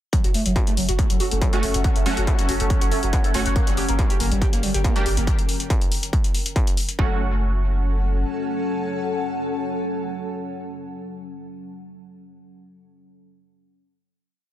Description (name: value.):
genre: driving peak-time techno.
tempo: 140 BPM.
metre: 4/4.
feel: straight.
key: F# phrygian.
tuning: A4 = 440 Hz.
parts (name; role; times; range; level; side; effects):
overdriven synth lead; riff; 0.1-7.2 s; F#3 to G4; -27 LUFS; equal; phaser, tube saturation, lush chorus, sidechain pumping, ping-pong delay.
deep dark ambient pad; drone; 1.0-10.7 s; F#3 to C#4; -32 LUFS; left 1 dB; chorus, built-in reverb, sidechain pumping.
electronic hi-hat; drums; 0.1-7.0 s; none; -29 LUFS; left 3 dB; sidechain pumping on hats.
electronic kick drum; drums; 0.1-7.1 s; none; -21 LUFS; equal; distortion, overdrive.
granular cloud pad; texture; 0.8-10.9 s; D3 to Bb5; -30 LUFS; left 1 dB; built-in reverb, sidechain pumping.
saturated sub bass; bass; 0.2-8.2 s; F#1 to G1; -24 LUFS; equal; overdrive, sidechain pumping, low-pass filter.
rave stab; stabs; 1.5-10.7 s; A3 to G4; -30 LUFS; right 3 dB; chorus, built-in reverb, sidechain pumping, ping-pong delay.
room: little or no reverb.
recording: dense, heavily limited modern master.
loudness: -19 LUFS.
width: side -12 dB against mid.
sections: 0.1-7.0 groove; 7.0-10.4 final chord.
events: none.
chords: 0.1 F#m; 3.6 Gm; 7.0 F#m.